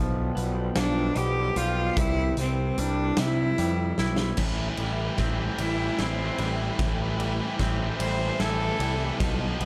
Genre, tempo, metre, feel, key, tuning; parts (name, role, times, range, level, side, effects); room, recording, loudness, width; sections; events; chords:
post-rock; 50 BPM (dotted quarters); 6/8; straight; A minor; A4 = 440 Hz
warbly tape-like pad; sustained chords; 0.2-9.7 s; E4 to G5; -42 LUFS; equal
twangy electric guitar; arpeggios; 0.0-9.7 s; A2 to G4; -36 LUFS; equal; tape echo
fuzz picked electric bass; bass; 0.0-9.7 s; A1 to C3; -31 LUFS; equal; overdrive
huge arena drum kit; drums; 0.4-9.7 s; crash cymbal, hi-hat, kick drum, ride cymbal, snare drum; -33 LUFS; equal
bright cello; melody; 0.8-9.2 s; C4 to C5; -32 LUFS; equal; tape echo
tight distorted guitar; riff; 4.4-9.7 s; A2 to F3; -34 LUFS; equal; distortion
small room ambience; dark, warm production; -26 LUFS; mono
0.0-4.4 A section; 4.4-9.7 B section
drum fill 4.0-4.4, 4.4-9.7; build-up 4.4-9.7
0.0 G7/B; 2.0 Cmaj7; 4.4 Am7